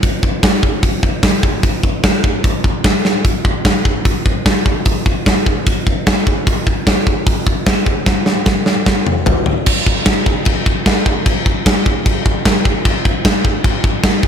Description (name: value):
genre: metal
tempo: 150 BPM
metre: 4/4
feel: straight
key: none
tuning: none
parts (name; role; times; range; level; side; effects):
- tight metal drum kit; drums; 0.0-14.3 s; china cymbal, crash cymbal, hi-hat, kick drum, snare drum, toms; -12 LUFS; equal; none
room: light reverb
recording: none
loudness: -12 LUFS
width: side -8 dB against mid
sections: 0.0-9.7 A section; 9.7-14.3 B section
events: drum fill 3.0, 8.1-9.7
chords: none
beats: | 0.03 0.43 0.83 1.23 | 1.64 2.04 2.44 2.84 | 3.25 3.65 4.05 4.45 | 4.85 5.25 5.66 6.06 | 6.46 6.86 7.26 7.66 | 8.06 8.46 8.87 9.26 | 9.66 10.06 10.46 10.86 | 11.25 11.65 12.05 12.44 | 12.84 13.23 13.63 14.02